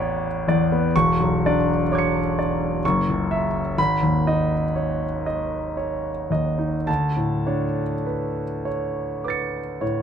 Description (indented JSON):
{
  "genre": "classical, impressionist solo piano",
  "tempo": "50-65 BPM",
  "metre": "3/4",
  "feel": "rubato",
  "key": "D lydian",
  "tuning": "A4 = 440 Hz",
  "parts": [
    { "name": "clear concert grand piano", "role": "solo", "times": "0.0-10.0 s", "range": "E1 to C#7", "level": "-20 LUFS", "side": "equal", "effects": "none" }
  ],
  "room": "light reverb",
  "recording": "close, detailed microphones",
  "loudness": "-20 LUFS",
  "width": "side -8 dB against mid",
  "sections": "0.0-10.0 A section",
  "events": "none",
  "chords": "0.0 Asus24; 0.9 E6; 2.8 F#5; 3.8 G#m; 6.9 D5"
}